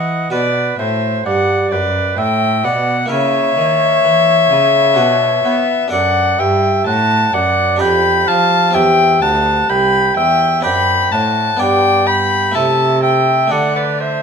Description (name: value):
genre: classical, baroque-style sonata movement with continuo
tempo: 64 BPM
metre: 3/4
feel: straight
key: unclear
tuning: A4 = 440 Hz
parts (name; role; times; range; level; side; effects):
- rich violin; melody; 0.0-14.2 s; D5 to B5; -15 LUFS; left 6 dB; none
- warm oboe; second line; 0.0-14.2 s; B4 to G5; -18 LUFS; right 8 dB; none
- harpsichord; accompaniment; 0.0-14.2 s; C2 to E5; -20 LUFS; right 1 dB; none
- rich cello; bass; 0.0-14.2 s; C2 to B3; -21 LUFS; right 2 dB; none
room: moderate large studio reverb, RT60 0.8 s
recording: minimal, uncompressed stereo recording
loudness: -12 LUFS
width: side -6 dB against mid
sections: 0.0-14.2 A section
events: none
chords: 0.3 B5; 3.1 A#dim/C#; 5.0 Bm; 5.9 D/F#; 7.8 G7/F; 8.7 C; 10.6 D7/F#; 11.6 G; 12.5 Am/C; 13.5 D5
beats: | 0.32 1.26 2.18 | 3.11 4.05 4.98 | 5.92 6.87 7.81 | 8.75 9.69 10.64 | 11.60 12.55 13.51